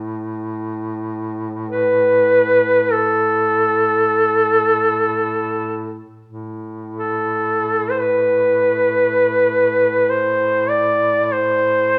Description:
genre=caucasian folk, Caucasian lament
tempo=free time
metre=none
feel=none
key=A minor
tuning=A4 = 440 Hz
part: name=warm duduk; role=drone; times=0.0-12.0 s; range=A2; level=-29 LUFS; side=equal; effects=none
part: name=warm duduk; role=melody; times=1.7-12.0 s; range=A4 to D5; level=-17 LUFS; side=equal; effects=none
room=moderate recital hall reverb, RT60 1.4 s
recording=none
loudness=-17 LUFS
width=mono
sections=0.0-6.3 A section; 6.3-12.0 A section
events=none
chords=none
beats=free time

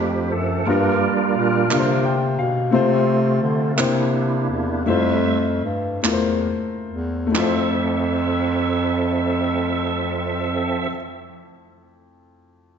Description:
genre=slow gospel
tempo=43-58 BPM (dotted quarters)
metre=6/8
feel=straight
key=F major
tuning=A4 = 442 Hz
part: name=warm upright piano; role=accompaniment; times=0.0-12.8 s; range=F2 to G5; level=-22 LUFS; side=left 4 dB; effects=none
part: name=bright tonewheel organ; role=sustained chords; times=0.0-10.9 s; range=F3 to E5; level=-22 LUFS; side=right 4 dB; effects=slow rotary speaker, chorus vibrato
part: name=warm bass clarinet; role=bass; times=0.0-10.9 s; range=E2 to D3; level=-23 LUFS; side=equal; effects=none
part: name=group handclap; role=percussion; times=1.7-7.8 s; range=none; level=-27 LUFS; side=right 4 dB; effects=none
room=wet concert hall reverb, RT60 1.8 s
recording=recorded in a church or concert hall, nothing above 7.7 kHz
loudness=-18 LUFS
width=side -7 dB against mid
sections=0.0-7.4 A section; 7.4-12.8 B section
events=tonewheel organ solo 0.0-7.4; upright piano fill 1.7-2.7; slowing down 2.7-7.4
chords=0.0 F6; 0.7 Gm7; 1.7 C9sus4; 2.7 F/C; 3.8 C7; 4.9 Fmaj7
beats=| 0.68 1.71 | 2.74 3.78 | 4.87 6.05 | 7.35 8.74 | 10.12 11.51

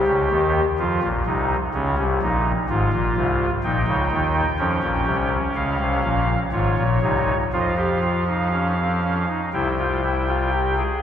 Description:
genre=classical, baroque-style 3-part fugue for pipe organ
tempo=59-64 BPM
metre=4/4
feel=straight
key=unclear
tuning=A4 = 441 Hz
part: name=pipe organ, soft reed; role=solo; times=0.0-11.0 s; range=Ab1 to G5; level=-19 LUFS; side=equal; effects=none
room=wet church reverb, RT60 3.6 s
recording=recorded in a church or concert hall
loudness=-19 LUFS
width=side -9 dB against mid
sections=0.0-11.0 A section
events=none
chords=0.0 Eb13; 1.7 Db; 3.6 Bbm; 7.5 N.C.; 9.5 C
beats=0.79 1.74 2.70 | 3.65 4.60 5.56 6.53 | 7.52 8.52 9.54 10.54

